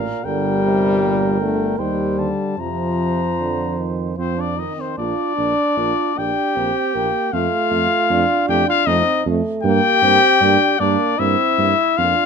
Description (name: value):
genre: classical, brass quintet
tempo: 77 BPM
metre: 3/4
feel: straight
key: Bb major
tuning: A4 = 439 Hz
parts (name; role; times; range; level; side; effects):
- warm cornet; melody; 0.0-12.3 s; C5 to Bb5; -19 LUFS; left 10 dB; none
- mellow flugelhorn; second line; 0.0-12.3 s; C4 to C5; -23 LUFS; right 10 dB; none
- warm euphonium; accompaniment; 0.0-12.3 s; Bb2 to F4; -25 LUFS; right 3 dB; none
- warm tuba; bass; 0.0-12.1 s; G1 to G2; -24 LUFS; right 6 dB; none
- warm French horn; accompaniment; 0.3-12.2 s; F3 to Bb3; -23 LUFS; left 4 dB; none
room: light reverb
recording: close, detailed microphones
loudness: -16 LUFS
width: side -6 dB against mid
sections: 0.0-5.0 A section; 5.0-12.3 B section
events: none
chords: 0.2 Gm; 1.8 Cm/Eb; 2.6 Fsus4; 4.2 Cmadd11/F; 5.0 Bb; 7.3 F; 9.6 Gm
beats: | 0.25 1.02 1.79 | 2.59 3.39 4.19 | 4.98 5.77 6.57 | 7.34 8.11 8.88 | 9.65 10.42 11.20 | 11.99